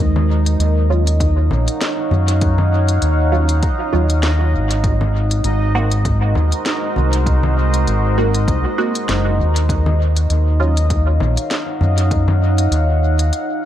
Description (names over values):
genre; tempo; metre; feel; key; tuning
ambient dub; 99 BPM; 4/4; swing 56% on 16ths; Eb dorian; A4 = 438 Hz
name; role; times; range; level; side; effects
deep dark ambient pad; sustained chords; 0.0-13.7 s; Ab3 to Gb5; -23 LUFS; right 2 dB; chorus, built-in reverb
fingered electric bass; bass; 0.0-13.3 s; Gb1 to Gb2; -15 LUFS; equal; tube saturation
bubbling stepped-filter texture; texture; 0.0-13.7 s; Eb4 to Eb5; -24 LUFS; left 2 dB; chorus, built-in reverb
organic electronic drum kit; drums; 0.2-13.5 s; congas, hi-hat, snare drum; -25 LUFS; left 1 dB; dub echo
filtered dub chord stab; stabs; 0.9-10.7 s; Gb3 to Gb4; -25 LUFS; right 2 dB; phaser, analog chorus, dub echo
electronic kick drum; drums; 1.2-12.2 s; none; -20 LUFS; equal; none
room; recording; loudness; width
light reverb, digital ambience; none; -14 LUFS; side -12 dB against mid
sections
0.0-13.7 A section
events
break 13.3-13.7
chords
0.0 Ebm9; 4.8 Ab9; 9.7 Ebm9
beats
0.60 1.20 1.81 | 2.42 3.02 3.63 4.23 | 4.84 5.45 6.05 6.66 | 7.26 7.87 8.48 9.08 | 9.69 10.29 10.90 11.51 | 12.11 12.72 13.32